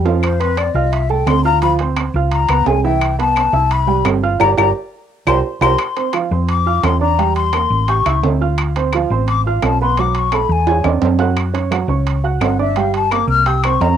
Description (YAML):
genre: Afro-Cuban jazz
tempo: 172 BPM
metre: 4/4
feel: straight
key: C major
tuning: A4 = 436 Hz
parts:
  - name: warm baby grand piano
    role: accompaniment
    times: 0.0-13.9 s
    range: E3 to G#6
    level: -20 LUFS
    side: right 9 dB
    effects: plate reverb
  - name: hollow-body short-scale fingered electric bass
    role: bass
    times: 0.0-14.0 s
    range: G1 to F#2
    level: -18 LUFS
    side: left 1 dB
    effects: none
  - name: timbales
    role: percussion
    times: 0.1-14.0 s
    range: none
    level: -21 LUFS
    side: right 9 dB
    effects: none
  - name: breathy hollow jazz flute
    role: second line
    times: 0.2-14.0 s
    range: B4 to F6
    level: -17 LUFS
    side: left 8 dB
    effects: plate reverb
  - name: claves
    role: percussion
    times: 0.2-13.8 s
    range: none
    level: -23 LUFS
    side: left 13 dB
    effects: none
room: light reverb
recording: home recording on cassette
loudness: -13 LUFS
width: side -9 dB against mid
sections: 0.0-5.8 A section; 5.8-14.0 A section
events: drum fill 0.0, 4.4-5.8, 10.7-11.4; flute solo 0.0-14.0; band accent 4.4-5.8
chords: 0.2 F; 1.6 Dm7; 2.3 Db7; 3.0 Cmaj7; 4.4 Gm; 5.1 C5; 5.8 F5; 7.2 Edim; 7.9 A7; 8.6 Dm7; 10.0 B5; 10.7 E9; 11.4 Gb5; 12.8 Gm; 13.5 C5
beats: | 0.23 0.58 0.92 1.27 | 1.62 1.97 2.32 2.66 | 3.01 3.36 3.71 4.06 | 4.40 4.75 5.10 5.45 | 5.80 6.14 6.49 6.84 | 7.19 7.54 7.89 8.24 | 8.59 8.93 9.28 9.63 | 9.98 10.33 10.68 11.03 | 11.37 11.72 12.07 12.42 | 12.77 13.11 13.46 13.81